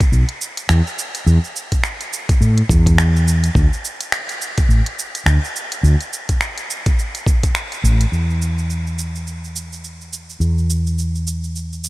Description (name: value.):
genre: organic downtempo.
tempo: 105 BPM.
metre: 4/4.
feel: swing 59% on 16ths.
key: unclear.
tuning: A4 = 440 Hz.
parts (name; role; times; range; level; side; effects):
electronic kick drum; drums; 0.0-7.5 s; none; -16 LUFS; equal; studio reverb.
organic electronic drum kit; drums; 0.0-11.9 s; finger snaps, hi-hat, shaker; -23 LUFS; right 1 dB; studio reverb.
woody fretless electric bass; bass; 0.1-11.9 s; A1 to A2; -15 LUFS; equal; tube saturation, sidechain pumping.
room: light reverb, digital ambience.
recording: none.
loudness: -16 LUFS.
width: side -20 dB against mid.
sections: 0.0-8.1 A section; 8.1-11.9 B section.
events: none.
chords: none.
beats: 0.12 0.69 | 1.26 1.83 2.41 2.98 | 3.55 4.12 4.69 5.26 | 5.83 6.41 6.98 7.55 | 8.12 8.69 9.26 9.84 | 10.41 10.98 11.55.